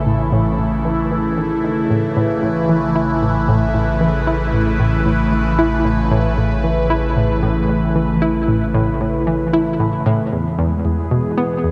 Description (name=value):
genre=ambient, sequencer-driven space music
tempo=114 BPM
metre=4/4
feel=straight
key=A major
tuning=A4 = 441 Hz
part: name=phased analog pad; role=sustained chords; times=0.0-11.7 s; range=C#3 to B4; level=-21 LUFS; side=equal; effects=phaser, chorus
part: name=round analog bass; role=bass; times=0.0-10.3 s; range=A1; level=-26 LUFS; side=equal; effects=none
part: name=analog pluck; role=riff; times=0.1-11.7 s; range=E2 to E4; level=-21 LUFS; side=equal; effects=chorus, tape echo
room=wet cathedral reverb, RT60 6.3 s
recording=in a vast, echoing space, cassette tape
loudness=-17 LUFS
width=mono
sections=0.0-10.3 A section; 10.3-11.7 B section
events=filter sweep on synth arpeggio sound 0.0-10.3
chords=0.0 A; 10.3 E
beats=0.32 0.85 1.38 | 1.90 2.43 2.96 3.48 | 4.01 4.53 5.06 5.59 | 6.11 6.64 7.17 7.69 | 8.22 8.74 9.27 9.80 | 10.32 10.85 11.38